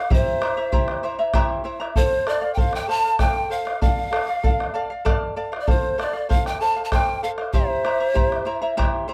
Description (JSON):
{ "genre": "andean folk, Andean ensemble", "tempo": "65 BPM (dotted quarters)", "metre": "6/8", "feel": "straight", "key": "unclear", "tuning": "A4 = 444 Hz", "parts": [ { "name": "breathy pan flute", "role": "melody", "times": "0.0-8.7 s", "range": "C5 to A5", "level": "-26 LUFS", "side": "equal", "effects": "none" }, { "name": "large quena", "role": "second line", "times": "0.0-8.7 s", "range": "C5 to A5", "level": "-33 LUFS", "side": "equal", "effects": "none" }, { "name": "charango", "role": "accompaniment", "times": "0.0-9.1 s", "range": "E4 to Bb5", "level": "-29 LUFS", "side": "equal", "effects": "none" }, { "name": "bombo", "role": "percussion", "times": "0.1-9.1 s", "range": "none", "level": "-25 LUFS", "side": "equal", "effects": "none" } ], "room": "light reverb", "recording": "dry, close 1970s-style studio recording", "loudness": "-22 LUFS", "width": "mono", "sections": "0.0-9.1 A section", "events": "none", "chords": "0.1 C7; 2.0 F; 3.8 Dm; 5.7 F; 7.5 C7", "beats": "| 0.11 1.03 | 1.96 2.89 | 3.82 4.75 | 5.68 6.61 | 7.54 8.47" }